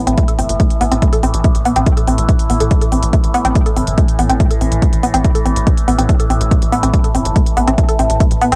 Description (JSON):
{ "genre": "driving peak-time techno", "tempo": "142 BPM", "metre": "4/4", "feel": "straight", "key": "A minor", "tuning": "A4 = 439 Hz", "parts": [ { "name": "overtone-sweeping drone", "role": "drone", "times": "0.0-8.6 s", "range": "A2 to E3", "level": "-23 LUFS", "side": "equal", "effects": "chorus, built-in reverb, sidechain pumping" }, { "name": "woody wave-folded pluck", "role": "riff", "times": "0.1-8.6 s", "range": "A3 to A4", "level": "-20 LUFS", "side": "equal", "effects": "chorus, tube saturation, sidechain pumping, analog delay" }, { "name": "tight sequencer bass", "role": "bass", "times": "0.1-8.6 s", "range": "G1 to A1", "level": "-20 LUFS", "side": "equal", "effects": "sidechain pumping" }, { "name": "electronic hi-hat", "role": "drums", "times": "0.1-8.6 s", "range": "none", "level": "-30 LUFS", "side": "equal", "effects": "sidechain pumping on hats, cassette tape" }, { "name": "electronic kick drum", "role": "drums", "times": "0.2-8.3 s", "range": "none", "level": "-16 LUFS", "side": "equal", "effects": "cassette tape" } ], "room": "light reverb", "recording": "home recording on cassette", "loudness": "-14 LUFS", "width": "mono", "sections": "0.0-8.6 A section", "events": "none", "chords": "0.0 A5" }